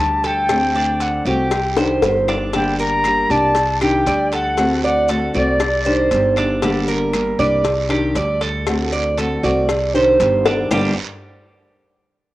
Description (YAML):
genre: latin, Cuban son and guajira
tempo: 117 BPM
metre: 4/4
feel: straight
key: G harmonic minor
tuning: A4 = 440 Hz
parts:
  - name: silver concert flute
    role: melody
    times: 0.0-6.3 s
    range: D5 to Bb5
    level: -19 LUFS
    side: left 1 dB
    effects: cassette tape
  - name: nylon-string guitar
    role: accompaniment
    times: 0.0-10.9 s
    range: G2 to G4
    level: -21 LUFS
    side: left 1 dB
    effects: cassette tape
  - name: Cuban tres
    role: arpeggios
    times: 0.0-11.0 s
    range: G3 to D5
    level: -20 LUFS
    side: right 2 dB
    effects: cassette tape
  - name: upright bass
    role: bass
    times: 0.0-10.9 s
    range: G1 to D2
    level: -24 LUFS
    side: equal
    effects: none
  - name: cowbell and bongos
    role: percussion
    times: 0.2-10.8 s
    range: none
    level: -24 LUFS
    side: left 5 dB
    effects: none
  - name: guiro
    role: percussion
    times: 0.2-10.8 s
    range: none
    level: -32 LUFS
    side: right 6 dB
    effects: none
  - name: maracas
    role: percussion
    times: 0.2-10.8 s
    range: none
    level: -38 LUFS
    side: left 4 dB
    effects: none
  - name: claves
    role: percussion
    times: 0.5-10.8 s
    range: none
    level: -34 LUFS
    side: left 4 dB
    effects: none
room: light reverb, studio reverb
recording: home recording on cassette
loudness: -15 LUFS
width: side -16 dB against mid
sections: 0.0-2.5 A section; 2.5-10.7 B section; 10.7-12.3 C section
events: drum fill 1.8-2.5, 10.5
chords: 0.5 D7; 1.5 Cmadd9; 2.5 Gm; 3.6 Cmadd9; 4.6 D7; 5.6 Cmadd9; 6.6 Gm; 7.6 Cmadd9; 8.7 D7; 9.7 Cmadd9; 10.7 Gm